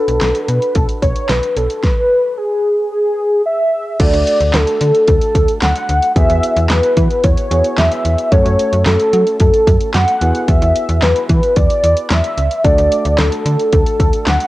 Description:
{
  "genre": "synth-pop",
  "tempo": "111 BPM",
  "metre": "4/4",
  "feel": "straight",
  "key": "unclear",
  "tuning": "A4 = 440 Hz",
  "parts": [
    { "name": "warm velvety synth lead", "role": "melody", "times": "0.0-14.5 s", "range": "G#4 to F#5", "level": "-14 LUFS", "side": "equal", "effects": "chorus, cassette tape, tape echo" },
    { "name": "soft electric-piano-like synth keys", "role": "accompaniment", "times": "0.0-14.5 s", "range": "A3 to B4", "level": "-24 LUFS", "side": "right 1 dB", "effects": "chorus" },
    { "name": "slap-like FM bass", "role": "bass", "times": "0.1-14.4 s", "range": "B1 to F#3", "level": "-16 LUFS", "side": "equal", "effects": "none" },
    { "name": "pop drum kit", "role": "drums", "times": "0.1-14.5 s", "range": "crash cymbal, handclaps, hi-hat, kick drum, snare drum", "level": "-16 LUFS", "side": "equal", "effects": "cassette tape" }
  ],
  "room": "light reverb",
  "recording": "home recording on cassette",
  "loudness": "-11 LUFS",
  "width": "side -17 dB against mid",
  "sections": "0.0-4.0 A section; 4.0-14.5 B section",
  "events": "none",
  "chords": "0.0 Bm; 1.8 N.C.; 4.0 D; 6.2 Eadd9; 8.3 F#m; 10.2 Eadd9; 12.6 D"
}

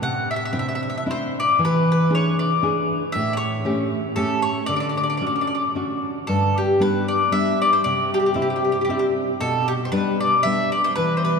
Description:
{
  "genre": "italian folk, Italian serenade",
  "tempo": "115 BPM",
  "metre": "3/4",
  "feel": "swing 53% on 8ths, rubato",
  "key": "D major, G major from 6.3 s",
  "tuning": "A4 = 440 Hz",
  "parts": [
    { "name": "mandolin", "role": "melody", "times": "0.0-11.4 s", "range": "G4 to F#5", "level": "-21 LUFS", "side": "left 1 dB", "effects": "none" },
    { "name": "nylon-string guitar", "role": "accompaniment", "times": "0.0-11.4 s", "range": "G2 to G#4", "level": "-23 LUFS", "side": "equal", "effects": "none" }
  ],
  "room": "wet cathedral reverb, RT60 6.4 s",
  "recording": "recorded in a church or concert hall",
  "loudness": "-19 LUFS",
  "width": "side -5 dB against mid",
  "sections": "0.0-6.3 A section; 6.3-11.4 B section",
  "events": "none",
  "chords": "0.0 Cadd9; 1.6 E7; 3.1 A7; 4.7 Dmaj7; 6.3 G; 7.8 Cadd9; 9.4 G/B"
}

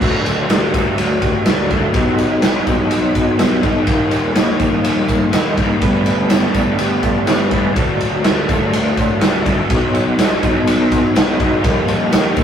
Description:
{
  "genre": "psychedelic rock",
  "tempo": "124 BPM",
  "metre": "4/4",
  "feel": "straight",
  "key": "unclear",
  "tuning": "A4 = 440 Hz",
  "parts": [
    { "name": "combo organ", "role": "sustained chords", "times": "0.0-12.4 s", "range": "F3 to B4", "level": "-24 LUFS", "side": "right 2 dB", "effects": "spring reverb" },
    { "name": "raw garage guitar", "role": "riff", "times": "0.0-12.4 s", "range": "G2 to D#4", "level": "-16 LUFS", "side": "left 1 dB", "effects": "overdrive, rotary speaker" },
    { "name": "fuzz fingered electric bass", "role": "bass", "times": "0.0-12.4 s", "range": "G1 to Eb2", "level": "-28 LUFS", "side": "equal", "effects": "none" },
    { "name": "raw garage drum kit", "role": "drums", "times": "0.0-12.4 s", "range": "crash cymbal, kick drum, ride cymbal, snare drum", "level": "-17 LUFS", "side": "right 1 dB", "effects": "none" },
    { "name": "tambourine", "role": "percussion", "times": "0.3-12.4 s", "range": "none", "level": "-41 LUFS", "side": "left 4 dB", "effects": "none" }
  ],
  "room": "moderate stone room reverb, RT60 1.2 s",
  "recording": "rough rehearsal-room recording, tube saturation",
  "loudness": "-13 LUFS",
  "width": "side -8 dB against mid",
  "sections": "0.0-12.4 A section",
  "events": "none",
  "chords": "0.0 D; 1.9 B; 3.9 Ebadd9; 5.8 Gadd9; 7.8 D; 9.7 B; 11.6 Ebadd9"
}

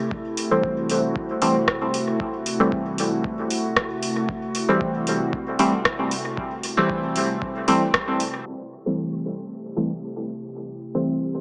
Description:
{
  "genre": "dub techno",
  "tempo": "115 BPM",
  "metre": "4/4",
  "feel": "straight",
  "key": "A dorian",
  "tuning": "A4 = 443 Hz",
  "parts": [
    { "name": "warbly tape-like pad", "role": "sustained chords", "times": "0.0-11.4 s", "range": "C3 to G4", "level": "-31 LUFS", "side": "equal", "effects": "chorus, built-in reverb, sidechain pumping" },
    { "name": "electronic kick drum", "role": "drums", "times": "0.1-8.1 s", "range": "none", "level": "-37 LUFS", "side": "equal", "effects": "overdrive" },
    { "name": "booming analog drum machine", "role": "drums", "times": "0.4-11.4 s", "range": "hi-hat, rim click, shaker", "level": "-28 LUFS", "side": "equal", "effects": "overdrive, low-pass filter on hats, low-pass filter on snare, low-pass filter on perc, low-pass filter on room, dub echo" },
    { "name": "deep mellow chord stab", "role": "stabs", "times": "0.5-11.4 s", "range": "E3 to C4", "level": "-25 LUFS", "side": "equal", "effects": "chorus, phaser, sidechain pumping, dub echo" }
  ],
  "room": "moderate huge ambient reverb, RT60 4.5 s",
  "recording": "low-pass filter, small speaker sound",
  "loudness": "-24 LUFS",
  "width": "mono",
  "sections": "0.0-8.5 A section; 8.5-11.4 B section",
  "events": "filter sweep on synth stab 8.5-11.4; filter sweep 8.5-11.4",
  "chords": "0.0 Am7"
}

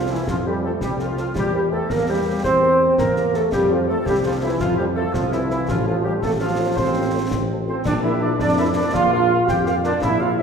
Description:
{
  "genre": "military-style march for wind band",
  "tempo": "111 BPM (dotted quarters)",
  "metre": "6/8",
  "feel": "straight",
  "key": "F major",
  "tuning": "A4 = 443 Hz",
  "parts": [
    { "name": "warm woodwind section", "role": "second line", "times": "0.0-10.4 s", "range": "E4 to G5", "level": "-26 LUFS", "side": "left 1 dB", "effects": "none" },
    { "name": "dark trombone section", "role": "sustained chords", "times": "0.0-10.4 s", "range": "E3 to G4", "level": "-20 LUFS", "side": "right 2 dB", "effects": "none" },
    { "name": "mellow tuba", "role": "bass", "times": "0.0-10.4 s", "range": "A1 to F2", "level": "-24 LUFS", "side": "equal", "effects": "none" },
    { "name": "dark trumpet section", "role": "melody", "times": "0.1-10.4 s", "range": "E4 to G5", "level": "-31 LUFS", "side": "right 1 dB", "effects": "none" },
    { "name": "mellow French horn section", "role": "accompaniment", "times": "0.1-10.4 s", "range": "E4 to C5", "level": "-30 LUFS", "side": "left 4 dB", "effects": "none" },
    { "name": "concert snare drum, concert bass drum and clash cymbals", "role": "drums", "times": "0.3-10.2 s", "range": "none", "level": "-28 LUFS", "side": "left 1 dB", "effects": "none" }
  ],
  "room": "wet concert hall reverb, RT60 1.7 s",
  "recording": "recorded in a church or concert hall",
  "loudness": "-17 LUFS",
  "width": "side -6 dB against mid",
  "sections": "0.0-10.4 A section",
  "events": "none",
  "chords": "0.0 F; 1.4 C7/E; 3.5 F; 5.7 F/A; 7.9 Bb5"
}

